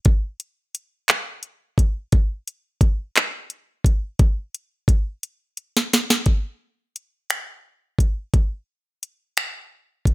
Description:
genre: R&B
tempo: 58 BPM (dotted quarters)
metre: 6/8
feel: straight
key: none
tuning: none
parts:
  - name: smooth R&B drum kit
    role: drums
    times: 0.0-10.1 s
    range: finger snaps, handclaps, hi-hat, kick drum, snare drum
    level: -18 LUFS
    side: equal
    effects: none
room: little or no reverb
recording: none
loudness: -20 LUFS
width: side -19 dB against mid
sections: 0.0-6.3 A section; 6.3-10.1 B section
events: drum fill 5.2-6.3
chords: none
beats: | 0.06 1.09 | 2.13 3.16 | 4.20 5.23 | 6.26 7.30 | 8.33 9.37

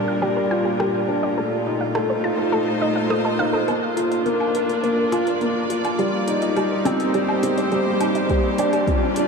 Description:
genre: piano and strings electronica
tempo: 104 BPM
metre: 4/4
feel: straight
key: Bb major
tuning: A4 = 440 Hz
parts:
  - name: clear studio string section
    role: sustained chords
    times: 0.0-9.3 s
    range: Bb2 to D5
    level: -24 LUFS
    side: equal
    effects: low-pass filter, shimmer reverb
  - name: felt-muted upright piano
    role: riff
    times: 0.0-9.3 s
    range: G3 to Bb4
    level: -21 LUFS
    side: left 1 dB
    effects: wide subtle chorus, tape echo, shimmer reverb
  - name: analog pluck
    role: arpeggios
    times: 0.1-9.0 s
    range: G4 to Eb6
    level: -27 LUFS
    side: right 1 dB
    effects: chorus, sidechain pumping, tape echo, shimmer reverb
  - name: deep house drum kit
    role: drums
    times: 0.8-9.3 s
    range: hi-hat, rim click, woodblock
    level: -33 LUFS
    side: right 1 dB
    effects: overdrive, high-pass filter on snare, high-pass filter on hats, high-pass filter on perc, high-pass filter on room
  - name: swell and riser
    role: sound effects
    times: 2.8-9.3 s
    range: none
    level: -33 LUFS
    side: equal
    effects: none
  - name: electronic kick drum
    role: drums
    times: 8.3-9.0 s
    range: none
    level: -22 LUFS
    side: equal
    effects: overdrive
room: wet huge ambient reverb, RT60 8.6 s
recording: dreamy mix soaked in reverb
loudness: -18 LUFS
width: side -4 dB against mid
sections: 0.0-3.7 A section; 3.7-9.3 B section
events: filter sweep on synth arpeggio sound 0.0-3.7; build-up 3.7-9.3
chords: 0.0 Gm7/Bb; 1.4 F7/Bb; 3.7 Bb; 6.0 Cm7; 8.3 Gm7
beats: 0.22 0.80 | 1.38 1.95 2.53 3.10 | 3.68 4.26 4.84 5.41 | 5.99 6.57 7.14 7.72 | 8.30 8.88

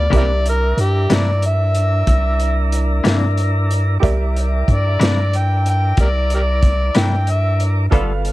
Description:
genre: slow blues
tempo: 62 BPM (dotted quarters)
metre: 12/8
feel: straight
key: unclear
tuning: A4 = 437 Hz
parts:
  - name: overdriven harmonica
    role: melody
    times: 0.0-7.6 s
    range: G4 to G5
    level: -21 LUFS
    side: equal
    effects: none
  - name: clear upright piano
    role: accompaniment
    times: 0.0-8.3 s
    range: G4 to F5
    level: -25 LUFS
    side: right 5 dB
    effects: none
  - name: tonewheel organ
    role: sustained chords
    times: 0.0-8.3 s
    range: B3 to D5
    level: -27 LUFS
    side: equal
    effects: slow rotary speaker
  - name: punchy sub bass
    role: bass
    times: 0.0-8.3 s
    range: G1 to G2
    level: -17 LUFS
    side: equal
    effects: none
  - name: semi-hollow electric guitar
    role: accompaniment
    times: 0.1-8.1 s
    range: C3 to A4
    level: -21 LUFS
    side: left 5 dB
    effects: harmonic tremolo
  - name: crunchy breakbeat drum kit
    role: drums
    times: 0.1-8.3 s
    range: hi-hat, kick drum, snare drum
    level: -18 LUFS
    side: equal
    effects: none
room: little or no reverb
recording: dark, warm production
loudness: -14 LUFS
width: side -18 dB against mid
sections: 0.0-8.3 A section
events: none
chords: 0.1 C9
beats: | 0.13 1.10 2.08 3.05 | 4.02 5.00 5.97 6.94 | 7.92

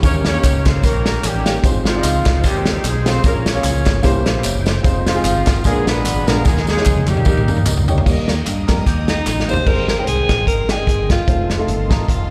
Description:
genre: uptempo gospel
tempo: 149 BPM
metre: 4/4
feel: swing 55% on 8ths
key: Ab major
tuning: A4 = 439 Hz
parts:
  - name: warm horn section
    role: melody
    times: 0.0-7.9 s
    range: F3 to Db5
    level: -24 LUFS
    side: equal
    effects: slapback echo
  - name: warm upright piano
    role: accompaniment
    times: 0.0-12.1 s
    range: Ab2 to G5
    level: -25 LUFS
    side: equal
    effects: slapback echo
  - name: bright tonewheel organ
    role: sustained chords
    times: 0.0-12.3 s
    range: Eb3 to G5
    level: -30 LUFS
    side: equal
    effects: none
  - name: modern bright fingered electric bass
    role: bass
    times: 0.0-12.3 s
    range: F1 to G2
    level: -22 LUFS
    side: equal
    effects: none
  - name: warm soul drum kit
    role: drums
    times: 0.0-12.2 s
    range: crash cymbal, hi-hat, kick drum, snare drum, toms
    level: -19 LUFS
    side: equal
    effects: none
  - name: tambourine and handclaps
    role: percussion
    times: 0.0-9.6 s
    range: none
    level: -32 LUFS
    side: equal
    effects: none
  - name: warm studio string section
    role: sustained chords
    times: 8.1-12.3 s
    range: Ab4 to Eb6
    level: -36 LUFS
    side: equal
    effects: none
  - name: clean electric guitar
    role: second line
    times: 8.7-12.3 s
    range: Eb4 to Bb4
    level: -32 LUFS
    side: equal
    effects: none
  - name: breathy alto saxophone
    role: melody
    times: 9.1-11.7 s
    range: Eb4 to C5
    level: -23 LUFS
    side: equal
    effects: none
room: light reverb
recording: live gig heard through the venue's PA, recital hall reverb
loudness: -16 LUFS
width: mono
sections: 0.0-8.1 A section; 8.1-9.7 B section; 9.7-12.3 C section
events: tonewheel organ fill 4.0-4.8; drum fill 6.5-8.1, 9.3-9.7; upright piano fill 7.5-8.1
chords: 0.0 Eb7; 1.6 Ab6; 3.2 Bbm7; 4.0 C7b9; 4.8 Fm7; 5.7 Bb7b9; 6.5 Ebsus4; 7.3 Eb; 9.7 Abmaj7; 11.3 F7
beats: | 0.03 0.43 0.83 1.23 | 1.64 2.04 2.44 2.84 | 3.24 3.64 4.05 4.45 | 4.85 5.25 5.65 6.05 | 6.46 6.86 7.26 7.66 | 8.06 8.46 8.87 9.27 | 9.67 10.07 10.48 10.88 | 11.28 11.68 12.09

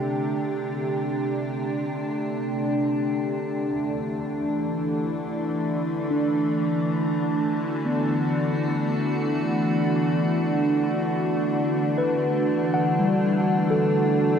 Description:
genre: ambient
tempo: free time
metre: none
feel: none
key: E minor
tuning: A4 = 440 Hz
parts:
  - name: evolving wavetable pad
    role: sustained chords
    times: 0.0-14.4 s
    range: C3 to G4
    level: -23 LUFS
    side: equal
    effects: chorus, built-in reverb
  - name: mellow tine electric piano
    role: arpeggios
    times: 6.1-14.4 s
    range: G3 to F#5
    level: -26 LUFS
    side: left 1 dB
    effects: medium stereo tremolo, diffuse ambient delay
room: wet huge ambient reverb, RT60 8.0 s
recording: none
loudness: -22 LUFS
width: side -7 dB against mid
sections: 0.0-14.4 A section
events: none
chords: 0.0 D7sus4; 3.5 Em11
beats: free time

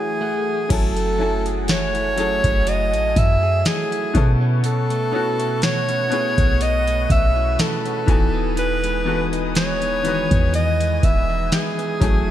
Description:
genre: contemporary R&B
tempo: 61 BPM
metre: 4/4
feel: swing 54% on 16ths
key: F# dorian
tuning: A4 = 440 Hz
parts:
  - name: bright alto saxophone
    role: melody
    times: 0.0-12.3 s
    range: G#4 to E5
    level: -22 LUFS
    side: right 1 dB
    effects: ping-pong delay
  - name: clear grand piano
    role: accompaniment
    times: 0.0-12.3 s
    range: B2 to G#5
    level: -26 LUFS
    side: left 6 dB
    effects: none
  - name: warm analog pad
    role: sustained chords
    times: 0.0-12.3 s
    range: E3 to E6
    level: -32 LUFS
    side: left 2 dB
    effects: chorus
  - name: direct-recorded clean electric guitar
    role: arpeggios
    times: 0.0-12.3 s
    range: B2 to G#4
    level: -28 LUFS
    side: right 9 dB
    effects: none
  - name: clean 808-style bass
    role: bass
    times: 0.7-12.3 s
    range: E1 to B2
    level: -22 LUFS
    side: equal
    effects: none
  - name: booming analog drum machine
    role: drums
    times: 0.7-12.3 s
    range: crash cymbal, hi-hat, kick drum, snare drum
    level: -20 LUFS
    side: equal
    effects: gated reverb
room: light reverb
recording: bright 1980s-style digital production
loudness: -17 LUFS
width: side -12 dB against mid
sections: 0.7-12.3 A section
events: break 0.0-0.7; grand piano fill 0.0-0.7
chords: 0.0 F#m9; 4.1 B9sus4; 8.1 Emaj7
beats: | 0.70 1.69 2.67 3.65 | 4.64 5.62 6.61 7.59 | 8.57 9.55 10.54 11.52

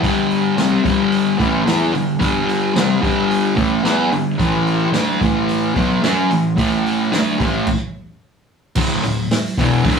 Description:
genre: garage rock duo or trio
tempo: 110 BPM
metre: 4/4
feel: straight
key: unclear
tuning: A4 = 441 Hz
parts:
  - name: fuzz guitar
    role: riff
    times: 0.0-10.0 s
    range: D2 to F#4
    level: -15 LUFS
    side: left 1 dB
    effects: distortion
  - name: vintage drum kit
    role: drums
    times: 0.0-10.0 s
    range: crash cymbal, hi-hat, kick drum, snare drum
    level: -22 LUFS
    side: right 1 dB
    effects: none
room: wet small room reverb, RT60 0.5 s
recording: rough rehearsal-room recording, tube saturation, small room ambience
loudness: -15 LUFS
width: side -6 dB against mid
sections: 0.0-8.8 A section; 8.8-10.0 B section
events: stop 7.7-8.8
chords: 0.0 G5; 4.4 A5; 7.7 N.C.; 8.8 D5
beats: | 0.03 0.58 1.12 1.67 | 2.21 2.76 3.31 3.85 | 4.40 4.94 5.49 6.04 | 6.58 7.13 7.67 8.22 | 8.76 9.30 9.85

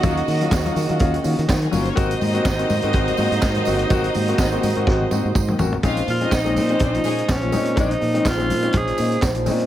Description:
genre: disco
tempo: 124 BPM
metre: 4/4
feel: swing 56% on 16ths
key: unclear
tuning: A4 = 440 Hz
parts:
  - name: clear studio string section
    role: second line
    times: 0.0-7.2 s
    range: F3 to Gb5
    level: -27 LUFS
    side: equal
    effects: none
  - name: warm grand piano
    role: accompaniment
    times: 0.0-9.6 s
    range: Ab2 to Gb4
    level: -24 LUFS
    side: left 5 dB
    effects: none
  - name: mellow French horn section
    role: sustained chords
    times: 0.0-9.7 s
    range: C3 to C5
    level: -28 LUFS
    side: right 3 dB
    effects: none
  - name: warm horn section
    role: stabs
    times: 0.0-5.6 s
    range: Gb3 to Eb5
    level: -28 LUFS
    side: right 5 dB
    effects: none
  - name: overdriven fingered electric bass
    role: bass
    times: 0.0-9.7 s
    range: G1 to Eb3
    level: -24 LUFS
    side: right 1 dB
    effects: none
  - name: vintage drum kit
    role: drums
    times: 0.0-9.7 s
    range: handclaps, hi-hat, kick drum, snare drum, toms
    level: -23 LUFS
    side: right 1 dB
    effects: none
  - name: congas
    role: percussion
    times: 0.0-9.6 s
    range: none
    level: -31 LUFS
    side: left 4 dB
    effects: none
  - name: tambourine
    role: percussion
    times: 0.0-9.6 s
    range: none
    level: -38 LUFS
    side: right 10 dB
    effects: none
  - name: growling alto saxophone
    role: melody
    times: 6.1-9.2 s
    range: Db4 to Ab4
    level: -24 LUFS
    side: right 1 dB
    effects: none
room: light reverb, studio reverb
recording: none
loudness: -17 LUFS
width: side -12 dB against mid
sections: 0.0-5.8 A section; 5.8-9.7 B section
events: drum fill 4.9-5.8; alto saxophone solo 5.8-9.7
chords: 0.0 Ab9; 5.8 Bbm11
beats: | 0.04 0.52 1.00 1.49 | 1.97 2.45 2.94 3.42 | 3.90 4.39 4.87 5.35 | 5.84 6.32 6.80 7.29 | 7.77 8.26 8.74 9.22

